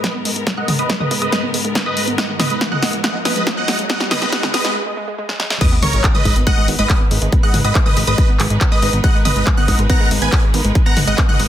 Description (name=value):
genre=uplifting trance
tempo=140 BPM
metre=4/4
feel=straight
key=G# minor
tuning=A4 = 440 Hz
part: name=big supersaw lead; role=melody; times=0.0-11.4 s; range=A#4 to A#5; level=-22 LUFS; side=right 1 dB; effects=phaser, sidechain pumping, low-pass filter, dub echo
part: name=wide unison pluck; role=second line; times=0.0-11.4 s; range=C#6 to A#6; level=-27 LUFS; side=equal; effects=sidechain pumping, dub echo
part: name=bright symphonic string section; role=sustained chords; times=0.0-11.5 s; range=G#2 to B4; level=-27 LUFS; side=equal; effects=sidechain pumping
part: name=wide unison pluck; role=arpeggios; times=0.0-11.4 s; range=G#3 to B3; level=-25 LUFS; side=right 2 dB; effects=sidechain pumping, dub echo
part: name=electronic kick drum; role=drums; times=0.0-11.3 s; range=none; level=-15 LUFS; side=equal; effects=high-pass filter on kick
part: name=punchy analog drum machine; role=drums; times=0.0-11.5 s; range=crash cymbal, handclaps, hi-hat, snare drum, toms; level=-20 LUFS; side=equal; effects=soft clipping on snare
part: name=riser and sub drop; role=sound effects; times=1.2-7.3 s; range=none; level=-28 LUFS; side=equal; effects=none
part: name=fat analog bass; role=bass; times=5.8-11.5 s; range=G#1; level=-19 LUFS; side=equal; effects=sidechain pumping
room=light reverb, digital ambience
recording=dense, heavily limited modern master, high-pass filter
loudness=-14 LUFS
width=side -11 dB against mid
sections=0.0-5.6 A section; 5.6-11.5 B section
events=build-up 0.0-5.6; drum fill 0.0-4.8, 5.3-5.6; filter sweep on supersaw synth 0.0-5.6; filter sweep on synth arpeggio sound 0.0-5.6; riser 1.2-4.8; break 4.8-5.6; drop 5.6-11.5; impact 5.6-7.3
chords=0.0 G#madd9